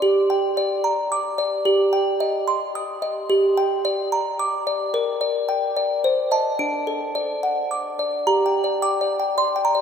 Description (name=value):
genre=classical, lullaby for music box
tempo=110 BPM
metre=3/4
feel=straight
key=G minor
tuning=A4 = 440 Hz
part: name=music box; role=solo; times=0.0-9.8 s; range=D4 to Eb6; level=-19 LUFS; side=equal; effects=none
room=wet cathedral reverb, RT60 5.8 s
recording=in a vast, echoing space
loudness=-19 LUFS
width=side -7 dB against mid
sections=0.0-8.3 A section; 8.3-9.8 B section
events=none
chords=0.0 Gm; 1.7 Cm/G; 3.3 Gm; 4.9 Gm/Bb; 6.0 Adim/C; 6.6 D; 8.3 Gm